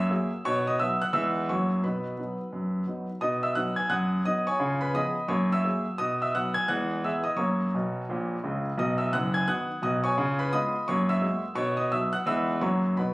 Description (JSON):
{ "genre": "jazz, stride piano", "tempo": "172 BPM", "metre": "4/4", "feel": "swing 61% on 8ths", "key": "B major", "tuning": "A4 = 440 Hz", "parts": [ { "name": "warm concert grand piano", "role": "solo", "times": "0.0-13.1 s", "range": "F#1 to G#6", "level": "-25 LUFS", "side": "equal", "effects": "none" } ], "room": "moderate studio reverb, RT60 0.8 s", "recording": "recorded on a phone in the room, club reverb, compression", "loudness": "-25 LUFS", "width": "side -21 dB against mid", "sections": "0.0-3.2 A section; 3.2-13.1 A section", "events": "grand piano fill 7.7-8.8", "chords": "0.5 B; 1.1 Emaj7; 1.5 F#; 1.8 B; 4.6 C#7; 5.3 F#9; 6.0 B; 6.7 E; 7.4 F#; 8.8 B; 10.2 C#7; 10.9 F#9; 11.6 B; 12.3 Emaj7; 12.6 F#" }